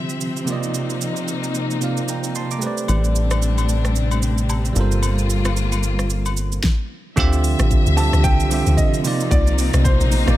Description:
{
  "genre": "amapiano",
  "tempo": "112 BPM",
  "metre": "4/4",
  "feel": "swing 58% on 16ths",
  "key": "D minor",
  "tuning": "A4 = 440 Hz",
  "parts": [
    { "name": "bell-like tine electric piano", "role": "accompaniment", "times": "0.0-10.4 s", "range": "C3 to D6", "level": "-24 LUFS", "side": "right 5 dB", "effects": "none" },
    { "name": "warm studio string section", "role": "sustained chords", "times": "0.0-10.4 s", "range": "C3 to E5", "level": "-25 LUFS", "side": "left 2 dB", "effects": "sidechain pumping" },
    { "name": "smooth R&B drum kit", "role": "drums", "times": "0.1-10.4 s", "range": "hi-hat, kick drum, rim click, shaker, snare drum", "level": "-22 LUFS", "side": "equal", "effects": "none" },
    { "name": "plucky analog bass", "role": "bass", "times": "2.9-6.6 s", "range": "G1 to A1", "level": "-19 LUFS", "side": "equal", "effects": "none" },
    { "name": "agogo bells and woodblock", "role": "percussion", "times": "2.9-6.4 s", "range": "none", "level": "-32 LUFS", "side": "left 8 dB", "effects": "none" },
    { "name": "deep log drum bass", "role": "bass", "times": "7.2-10.4 s", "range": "A1 to D2", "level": "-17 LUFS", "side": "equal", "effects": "none" },
    { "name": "warm grand piano", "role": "melody", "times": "8.0-10.4 s", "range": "C5 to A5", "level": "-25 LUFS", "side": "equal", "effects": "digital delay" }
  ],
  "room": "digital ambience",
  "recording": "none",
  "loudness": "-17 LUFS",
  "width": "side -14 dB against mid",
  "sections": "0.0-7.2 A section; 7.2-10.4 B section",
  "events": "drop 7.2-10.4",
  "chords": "0.5 Cm11; 2.6 Am11; 4.8 Gm11; 7.2 Dm11; 9.0 Cm11"
}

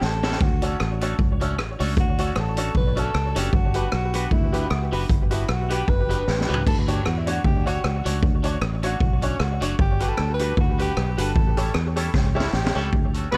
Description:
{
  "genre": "ska",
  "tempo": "153 BPM",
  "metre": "4/4",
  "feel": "swing 56% on 8ths",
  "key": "D major",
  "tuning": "A4 = 440 Hz",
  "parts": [
    { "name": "breathy tenor saxophone", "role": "melody", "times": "0.0-12.9 s", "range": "C#4 to B4", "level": "-32 LUFS", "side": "equal", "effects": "tape echo" },
    { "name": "fingered electric bass", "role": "bass", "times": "0.0-13.4 s", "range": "F#1 to E2", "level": "-27 LUFS", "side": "equal", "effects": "none" },
    { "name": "street-band drum kit", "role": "drums", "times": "0.0-13.4 s", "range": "crash cymbal, hi-hat, kick drum, rim click, snare drum, toms", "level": "-26 LUFS", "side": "equal", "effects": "none" },
    { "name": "twangy electric guitar", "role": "accompaniment", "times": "0.2-13.3 s", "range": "G3 to C#5", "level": "-35 LUFS", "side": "equal", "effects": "phaser" },
    { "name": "honky-tonk upright piano", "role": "stabs", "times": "0.6-12.9 s", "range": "D4 to C#5", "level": "-33 LUFS", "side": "equal", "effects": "tape echo" },
    { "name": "warm horn section", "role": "melody", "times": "13.3-13.4 s", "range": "B3 to B4", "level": "-21 LUFS", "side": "equal", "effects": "none" }
  ],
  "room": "little or no reverb",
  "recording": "dark, warm production",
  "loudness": "-23 LUFS",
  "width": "mono",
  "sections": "0.0-12.9 A section",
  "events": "tenor saxophone solo 0.0-12.9; drum fill 0.0-0.4, 6.3-6.7, 12.1-12.9",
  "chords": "0.4 Dmaj7; 3.5 Gmaj7; 6.7 Dmaj7; 9.8 Gmaj7; 11.4 A7"
}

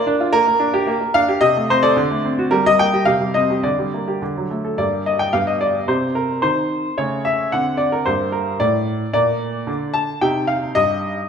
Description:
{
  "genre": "classical-period piano sonatina",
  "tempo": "110 BPM",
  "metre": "2/4",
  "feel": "straight",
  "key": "G minor",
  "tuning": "A4 = 437 Hz",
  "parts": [
    { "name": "clear baby grand piano", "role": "solo", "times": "0.0-11.3 s", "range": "G2 to A5", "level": "-16 LUFS", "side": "equal", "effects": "none" }
  ],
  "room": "wet recital hall reverb, RT60 1.6 s",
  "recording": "minimal, uncompressed stereo recording",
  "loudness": "-16 LUFS",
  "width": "side -7 dB against mid",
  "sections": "0.0-4.8 A section; 4.8-11.3 B section",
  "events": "none",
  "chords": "0.3 Gm/Bb; 1.4 Adim/C; 2.0 D7; 2.5 Gm; 3.1 Cm; 3.6 Gm/D; 4.2 D; 4.8 Gm; 5.3 G; 5.9 Cm; 7.0 A/C#; 7.5 D7; 8.1 Gm; 9.1 Bbmaj7; 10.2 Cm"
}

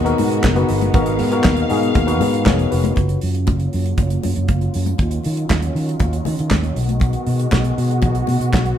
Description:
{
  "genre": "disco",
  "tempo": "119 BPM",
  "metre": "4/4",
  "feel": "straight",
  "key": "F# major",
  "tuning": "A4 = 441 Hz",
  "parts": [
    { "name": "tine electric piano", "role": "accompaniment", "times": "0.0-3.2 s", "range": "B3 to E#5", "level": "-19 LUFS", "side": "left 3 dB", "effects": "none" },
    { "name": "warm studio string section", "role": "sustained chords", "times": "0.0-8.8 s", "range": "B2 to E#5", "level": "-25 LUFS", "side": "equal", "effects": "low-pass filter" },
    { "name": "fingered electric bass", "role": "bass", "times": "0.0-8.7 s", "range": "E1 to D#3", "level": "-19 LUFS", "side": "equal", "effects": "none" },
    { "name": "damped 70s drum kit", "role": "drums", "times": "0.1-8.8 s", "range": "handclaps, hi-hat, kick drum, snare drum", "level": "-20 LUFS", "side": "right 1 dB", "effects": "none" },
    { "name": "congas", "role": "percussion", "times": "0.2-8.6 s", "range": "none", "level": "-27 LUFS", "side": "left 6 dB", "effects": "none" }
  ],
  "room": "moderate large studio reverb, RT60 0.9 s",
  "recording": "band playing live in one room",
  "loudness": "-15 LUFS",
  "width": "side -10 dB against mid",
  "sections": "0.0-3.0 A section; 3.0-8.8 B section",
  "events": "filter sweep on string section 3.0-8.8",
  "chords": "0.0 G#m9; 3.0 F#maj7; 5.0 D#m9; 6.8 B6"
}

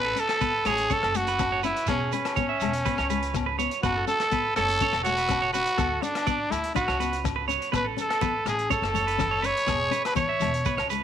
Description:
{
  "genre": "highlife guitar band",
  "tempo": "123 BPM",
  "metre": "4/4",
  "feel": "straight",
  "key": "A major",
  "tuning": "A4 = 440 Hz",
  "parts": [
    { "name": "growling trumpet", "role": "melody", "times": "0.0-10.9 s", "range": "C#4 to C#5", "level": "-26 LUFS", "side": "equal", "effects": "none" },
    { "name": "nylon-string guitar", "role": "accompaniment", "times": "0.0-11.0 s", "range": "G#3 to D4", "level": "-34 LUFS", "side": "left 11 dB", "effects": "none" },
    { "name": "clean electric guitar", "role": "arpeggios", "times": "0.0-11.0 s", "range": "G#4 to E5", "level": "-30 LUFS", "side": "right 10 dB", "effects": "slapback echo" },
    { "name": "upright bass", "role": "bass", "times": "0.0-11.0 s", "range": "E1 to D2", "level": "-33 LUFS", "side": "equal", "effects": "none" },
    { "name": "crunchy breakbeat drum kit", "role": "drums", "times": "0.2-11.0 s", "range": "hi-hat, kick drum, rim click", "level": "-34 LUFS", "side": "left 3 dB", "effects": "none" },
    { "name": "shekere", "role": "percussion", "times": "0.2-11.0 s", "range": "none", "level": "-38 LUFS", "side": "right 6 dB", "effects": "none" },
    { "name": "agogo bells", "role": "percussion", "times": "0.3-10.9 s", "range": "none", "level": "-37 LUFS", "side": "left 12 dB", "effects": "none" },
    { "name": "congas", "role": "percussion", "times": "7.7-10.7 s", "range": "none", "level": "-37 LUFS", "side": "left 9 dB", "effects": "none" }
  ],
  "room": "light reverb, small room reverb",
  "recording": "1960s-style stereo with parts hard left and right",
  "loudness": "-23 LUFS",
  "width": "side -9 dB against mid",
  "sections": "0.0-11.0 A section",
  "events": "none",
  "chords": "0.0 Aadd9; 1.9 E6; 3.8 F#m; 5.8 D; 7.7 Aadd9; 9.7 E6"
}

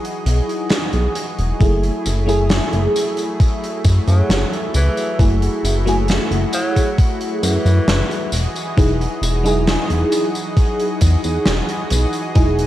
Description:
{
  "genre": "vaporwave",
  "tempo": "67 BPM",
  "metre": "4/4",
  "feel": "straight",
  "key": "F# dorian",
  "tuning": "A4 = 440 Hz",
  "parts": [
    { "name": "FM electric piano with soft pad layer", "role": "accompaniment", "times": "0.0-12.7 s", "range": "F#3 to G#4", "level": "-21 LUFS", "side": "equal", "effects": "ensemble chorus, vintage 12-bit sampler grit, tape echo" },
    { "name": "lush unison pad", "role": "sustained chords", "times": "0.0-12.7 s", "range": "E3 to D#5", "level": "-27 LUFS", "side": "equal", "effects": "chorus, vintage 12-bit sampler grit" },
    { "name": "big rock drum kit", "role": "drums", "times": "0.0-12.7 s", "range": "hi-hat, snare drum, tambourine", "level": "-23 LUFS", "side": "equal", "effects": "gated reverb" },
    { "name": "chorused synth bass", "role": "bass", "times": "0.3-12.7 s", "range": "E1 to F#2", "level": "-17 LUFS", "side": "equal", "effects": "none" },
    { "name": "electronic kick drum", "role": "drums", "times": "1.6-12.5 s", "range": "none", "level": "-14 LUFS", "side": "equal", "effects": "none" },
    { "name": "mellow tenor saxophone", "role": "melody", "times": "4.1-8.4 s", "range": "E3 to F#3", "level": "-27 LUFS", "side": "equal", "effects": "vintage 12-bit sampler grit, tape echo" }
  ],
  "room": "light reverb, small room ambience",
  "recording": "cassette tape",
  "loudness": "-15 LUFS",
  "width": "side -14 dB against mid",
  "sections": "0.0-12.7 A section",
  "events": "none",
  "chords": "0.0 Emaj9; 1.6 F#m9; 8.3 Emaj9"
}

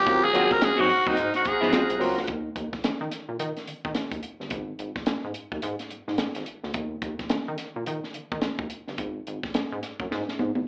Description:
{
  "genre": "funk",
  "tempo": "108 BPM",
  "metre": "4/4",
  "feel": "swing 60% on 16ths",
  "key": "unclear",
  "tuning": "A4 = 440 Hz",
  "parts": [
    { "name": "raspy tenor saxophone", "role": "melody", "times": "0.0-2.0 s", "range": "Eb4 to Bb4", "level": "-21 LUFS", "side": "equal", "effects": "none" },
    { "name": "mellow tonewheel organ", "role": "sustained chords", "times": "0.0-2.3 s", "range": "C5 to Bb5", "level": "-31 LUFS", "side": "equal", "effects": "overdrive, chorus vibrato, slow rotary speaker" },
    { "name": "rubbery square bass", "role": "bass", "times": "0.0-10.6 s", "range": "G1 to Eb3", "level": "-32 LUFS", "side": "equal", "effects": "none" },
    { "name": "mellow clav", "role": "stabs", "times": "0.1-2.2 s", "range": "Gb3 to Ab4", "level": "-26 LUFS", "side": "equal", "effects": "phaser, slapback echo" },
    { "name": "compact cocktail drum kit", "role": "drums", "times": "0.1-10.7 s", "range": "hi-hat, kick drum, snare drum, toms", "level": "-29 LUFS", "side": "equal", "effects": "slapback echo" },
    { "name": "electric guitar at the edge of break-up", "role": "accompaniment", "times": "0.3-1.8 s", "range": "Gb3 to Gb4", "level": "-27 LUFS", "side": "equal", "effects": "ensemble chorus, slapback echo" }
  ],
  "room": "light reverb, studio ambience",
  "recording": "live gig heard through the venue's PA, club reverb, AM radio sound",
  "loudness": "-25 LUFS",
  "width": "side -31 dB against mid",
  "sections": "0.0-2.3 A section; 2.3-10.7 B section",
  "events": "tenor saxophone solo 0.0-2.3; drum fill 10.1-10.7",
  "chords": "0.1 Ab13; 2.3 N.C.; 4.5 Ab5; 6.7 N.C."
}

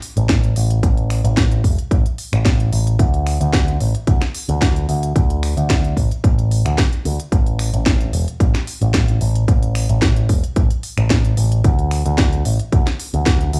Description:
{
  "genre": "nu-disco, nu disco",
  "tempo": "111 BPM",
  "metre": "4/4",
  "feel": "straight",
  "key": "unclear",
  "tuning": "A4 = 440 Hz",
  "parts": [
    { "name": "house drum kit", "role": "drums", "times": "0.0-13.6 s", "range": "finger snaps, hi-hat, snare drum", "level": "-26 LUFS", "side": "equal", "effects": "none" },
    { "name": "picked electric bass with an envelope filter", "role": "bass", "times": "0.2-13.6 s", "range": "E1 to D2", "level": "-19 LUFS", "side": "equal", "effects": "tube saturation" },
    { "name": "electronic kick drum", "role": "drums", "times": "0.3-13.4 s", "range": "none", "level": "-19 LUFS", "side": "equal", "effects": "none" }
  ],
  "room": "little or no reverb",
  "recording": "dry, gritty hardware recording, cassette tape, studio ambience",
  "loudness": "-17 LUFS",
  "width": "mono",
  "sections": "0.0-13.6 A section",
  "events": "none",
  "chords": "none"
}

